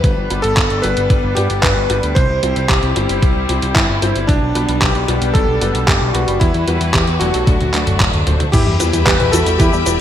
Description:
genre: italo disco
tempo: 113 BPM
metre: 4/4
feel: straight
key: G major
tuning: A4 = 440 Hz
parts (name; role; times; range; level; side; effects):
- bright electric grand piano; melody; 0.0-10.0 s; D4 to C5; -19 LUFS; left 1 dB; digital delay
- bright symphonic string section; sustained chords; 0.0-10.0 s; E3 to B5; -24 LUFS; left 1 dB; none
- fat analog bass; bass; 0.0-10.0 s; D1 to G2; -19 LUFS; equal; none
- detuned 8-bit digital drum machine; drums; 0.0-10.0 s; cabasa, crash cymbal, handclaps, hi-hat, toms; -19 LUFS; equal; gated reverb
- electronic kick drum; drums; 0.0-9.7 s; none; -16 LUFS; equal; none
- clear baby grand piano; stabs; 0.3-10.0 s; F#3 to D5; -24 LUFS; left 2 dB; ensemble chorus, digital delay
- analog pluck; arpeggios; 8.5-10.0 s; E3 to B3; -23 LUFS; right 3 dB; chorus, digital delay
- sub drop; sound effects; 8.5-10.0 s; none; -22 LUFS; equal; none
room: moderate plate reverb, RT60 1.6 s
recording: bright 1980s-style digital production, vinyl crackle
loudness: -13 LUFS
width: side -10 dB against mid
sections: 0.0-8.5 A section; 8.5-10.0 B section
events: drum fill 7.5-8.5; impact 8.5-10.0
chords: 0.0 G; 2.2 C; 4.3 G/B; 6.4 Emadd9; 7.5 D; 8.5 Em

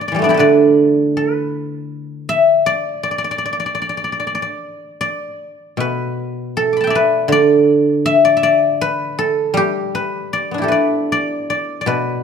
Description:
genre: chinese traditional, Chinese solo plucked strings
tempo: 73-82 BPM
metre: 2/4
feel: rubato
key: D zhi mode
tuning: A4 = 440 Hz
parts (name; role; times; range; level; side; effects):
- guzheng; solo; 0.0-12.2 s; B2 to D6; -14 LUFS; equal; none
room: light reverb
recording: close, detailed microphones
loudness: -14 LUFS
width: side -7 dB against mid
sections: 0.0-5.0 A section; 5.0-12.2 B section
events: none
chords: none

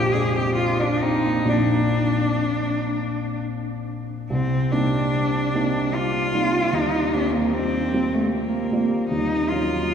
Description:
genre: classical, impressionist duo for cello and grand piano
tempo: 60-77 BPM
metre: 3/4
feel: rubato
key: C minor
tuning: A4 = 440 Hz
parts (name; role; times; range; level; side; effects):
- rich cello; melody; 0.0-9.9 s; A3 to Ab4; -23 LUFS; left 1 dB; none
- dark grand piano; accompaniment; 0.0-9.9 s; Bb1 to F4; -22 LUFS; equal; none
room: wet cathedral reverb, RT60 4.2 s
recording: heard from further back in the room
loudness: -20 LUFS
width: side -7 dB against mid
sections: 0.0-4.3 A section; 4.3-9.9 B section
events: none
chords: 0.0 Bbadd9; 4.3 Cm9; 6.7 Eb69; 9.1 Ebm9

